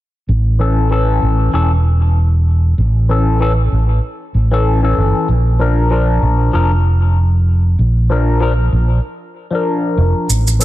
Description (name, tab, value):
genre	organic downtempo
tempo	96 BPM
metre	4/4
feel	swing 56% on 16ths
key	unclear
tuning	A4 = 438 Hz
part	fretless electric bass	bass	0.3-10.6 s	E1 to Bb1	-12 LUFS	right 1 dB	wide subtle chorus
part	overdriven tine electric piano	accompaniment	0.6-10.6 s	E3 to Bb4	-18 LUFS	left 3 dB	phaser, digital delay
part	shaker	drums	10.3-10.6 s	none	-18 LUFS	right 4 dB	overdrive
room	light reverb, digital ambience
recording	dense, heavily limited modern master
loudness	-12 LUFS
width	side -15 dB against mid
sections	0.3-10.6 A section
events	filter sweep on fretless electric bass 0.3-10.6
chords	0.3 A; 5.3 Bb